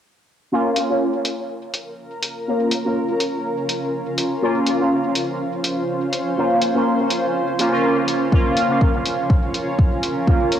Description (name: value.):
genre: dub techno.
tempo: 123 BPM.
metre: 4/4.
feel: swing 54% on 16ths.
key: Bb minor.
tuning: A4 = 438 Hz.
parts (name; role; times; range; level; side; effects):
granular cloud pad; sustained chords; 1.9-10.6 s; Db4 to C5; -23 LUFS; right 1 dB; built-in reverb, sidechain pumping, cassette tape.
resonant sweep polysynth; stabs; 0.5-10.5 s; Bb3 to F4; -20 LUFS; equal; chorus, phaser, sidechain pumping, cassette tape, dub echo.
electronic hi-hat; drums; 0.8-10.6 s; none; -23 LUFS; left 1 dB; studio reverb.
electronic kick drum; drums; 8.3-10.4 s; none; -17 LUFS; equal; overdrive, studio reverb.
room: moderate lush hall reverb, RT60 1.6 s.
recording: home recording on cassette.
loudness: -18 LUFS.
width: side -9 dB against mid.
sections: 0.5-10.6 A section.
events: filter sweep on analog polysynth 0.5-10.6.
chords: 0.5 Bbm.